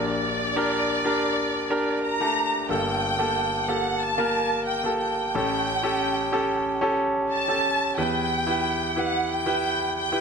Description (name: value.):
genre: pop.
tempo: 91 BPM.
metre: 4/4.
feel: straight.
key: unclear.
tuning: A4 = 440 Hz.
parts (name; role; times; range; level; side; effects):
warm studio violin section; melody; 0.0-10.2 s; D5 to Bb5; -26 LUFS; equal; none.
clear concert grand piano; accompaniment; 0.0-10.2 s; G1 to B4; -25 LUFS; equal; none.
room: moderate plate reverb, RT60 2.6 s.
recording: none.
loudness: -22 LUFS.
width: side -6 dB against mid.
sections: 0.0-2.7 A section; 2.7-10.2 B section.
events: none.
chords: 0.0 Bb6; 2.7 Gmadd9; 5.3 A7; 8.0 Em.